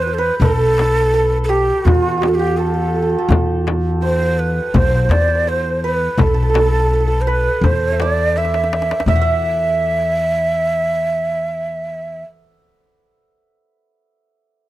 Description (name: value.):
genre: Persian modal ensemble.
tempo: 83 BPM.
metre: 4/4.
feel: straight.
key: E dastgah shur.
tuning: A4 = 440 Hz.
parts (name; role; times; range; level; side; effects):
breathy ney; melody; 0.0-12.2 s; F4+41c to E5; -18 LUFS; right 1 dB; none.
santur; second line; 0.0-12.4 s; F4+45c to F#5; -21 LUFS; right 3 dB; none.
upright bass; bass; 0.0-12.2 s; B1 to E2; -19 LUFS; equal; none.
tombak; percussion; 0.1-9.4 s; none; -20 LUFS; left 2 dB; none.
frame drum; percussion; 0.4-9.4 s; none; -22 LUFS; left 3 dB; none.
room: little or no reverb.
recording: dry, close 1970s-style studio recording.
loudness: -14 LUFS.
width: side -15 dB against mid.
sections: 0.0-9.1 A section; 9.1-12.0 B section.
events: drum fill 8.4-9.1.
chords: none.